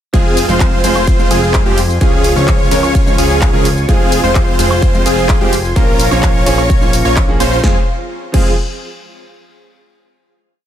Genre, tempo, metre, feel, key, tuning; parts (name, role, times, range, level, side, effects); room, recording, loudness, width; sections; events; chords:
EDM, festival progressive house; 128 BPM; 4/4; straight; F minor; A4 = 439 Hz
clear grand piano; accompaniment; 0.1-8.5 s; F3 to Bb4; -19 LUFS; right 3 dB; sidechain pumping, digital delay
lush unison pad; sustained chords; 0.1-7.9 s; C4 to Db6; -24 LUFS; left 2 dB; chorus, sidechain pumping
wide unison lead; arpeggios; 0.1-8.5 s; G4 to Db5; -19 LUFS; equal; sidechain pumping, digital delay
big supersaw lead; riff; 0.1-8.5 s; C4 to Db5; -18 LUFS; equal; sidechain pumping, digital delay
fat analog bass; bass; 0.1-8.6 s; F1 to F2; -18 LUFS; equal; sidechain pumping
big-room dance drum kit; drums; 0.1-8.4 s; crash cymbal, handclaps, hi-hat, ride cymbal, shaker, snare drum, woodblock; -22 LUFS; equal; small room ambience
electronic kick drum; drums; 0.1-8.4 s; -14 LUFS; equal; small room ambience
little or no reverb; -10 LUFS; side -10 dB against mid
0.1-7.6 drop; 7.6-9.5 final chord
drop 0.1-7.6
0.1 Fm; 2.0 Db; 3.9 Fm; 5.8 Bbm; 7.6 Fm